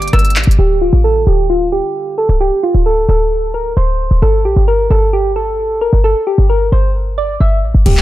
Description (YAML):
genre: hip hop, trap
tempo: 132 BPM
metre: 4/4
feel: half-time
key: D minor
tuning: A4 = 440 Hz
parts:
  - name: soft electric-piano-like synth keys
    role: melody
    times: 0.0-8.0 s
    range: F4 to E6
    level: -15 LUFS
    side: right 1 dB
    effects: chorus, low-pass filter
  - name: deep dark ambient pad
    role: sustained chords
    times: 0.0-0.6 s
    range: D3 to G4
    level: -30 LUFS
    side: right 2 dB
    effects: chorus, built-in reverb
  - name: short 808-style bass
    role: bass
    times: 0.0-8.0 s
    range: C1 to Bb1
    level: -12 LUFS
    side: equal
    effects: none
  - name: trap drum kit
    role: drums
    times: 0.0-0.6, 7.9-8.0 s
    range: crash cymbal, handclaps, hi-hat, rim click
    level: -18 LUFS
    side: equal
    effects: overdrive
  - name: impact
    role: sound effects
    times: 7.9-8.0 s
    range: none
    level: -13 LUFS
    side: left 1 dB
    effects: none
room: little or no reverb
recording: dark, warm production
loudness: -11 LUFS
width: side -15 dB against mid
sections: 0.6-7.9 A section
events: filter sweep on synth keys 0.6-7.9; impact 7.9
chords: 0.0 Gm; 0.6 D5; 4.2 Gm